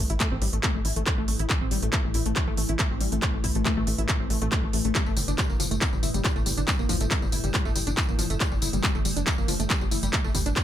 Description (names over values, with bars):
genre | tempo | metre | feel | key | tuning
driving peak-time techno | 139 BPM | 4/4 | straight | unclear | A4 = 440 Hz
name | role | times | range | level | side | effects
tight sequenced synth | riff | 0.0-10.6 s | F3 to E4 | -32 LUFS | left 2 dB | chorus, tube saturation, sidechain pumping, ping-pong delay
tight sequencer bass | bass | 0.0-10.5 s | G1 to A1 | -28 LUFS | equal | sidechain pumping
metallic inharmonic drone | drone | 0.0-10.6 s | A2 to E3 | -34 LUFS | equal | chorus, built-in reverb, sidechain pumping
techno drum kit | drums | 0.1-10.6 s | handclaps, hi-hat, tambourine | -28 LUFS | equal | sidechain pumping on hats, sidechain pumping on perc
electronic kick drum | drums | 0.2-10.6 s | none | -27 LUFS | equal | none
room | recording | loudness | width
digital ambience | none | -23 LUFS | side -11 dB against mid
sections
0.0-10.6 A section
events
none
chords
0.0 A5; 5.0 N.C.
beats
0.20 0.63 1.06 | 1.50 1.93 2.36 2.79 | 3.22 3.65 4.09 4.52 | 4.95 5.38 5.81 6.25 | 6.68 7.11 7.54 7.97 | 8.40 8.84 9.27 9.70 | 10.13 10.56